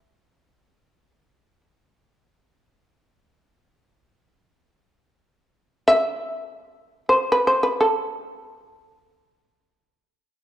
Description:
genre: japanese traditional, Japanese chamber music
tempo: free time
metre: none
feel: none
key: A hirajoshi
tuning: A4 = 440 Hz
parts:
  - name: shamisen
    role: solo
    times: 0.0-10.4 s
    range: A4 to E5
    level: -18 LUFS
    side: equal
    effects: none
room: moderate concert hall reverb, RT60 1.8 s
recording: dark, warm production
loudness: -19 LUFS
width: side -12 dB against mid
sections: 0.0-10.4 A section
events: slowing down 1.3-10.4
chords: none

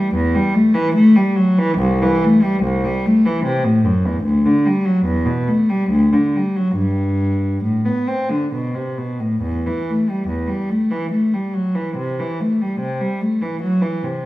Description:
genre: classical, baroque-style suite movement for unaccompanied cello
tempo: 65-75 BPM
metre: 3/4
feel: rubato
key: G major, E minor from 9.4 s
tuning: A4 = 440 Hz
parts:
  - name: dark cello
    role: solo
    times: 0.0-14.3 s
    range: C2 to C4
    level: -15 LUFS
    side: equal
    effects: none
room: wet stone room reverb, RT60 1.2 s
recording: heard from further back in the room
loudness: -15 LUFS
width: side -16 dB against mid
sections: 0.0-9.4 A section; 9.4-14.3 A section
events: none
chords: none

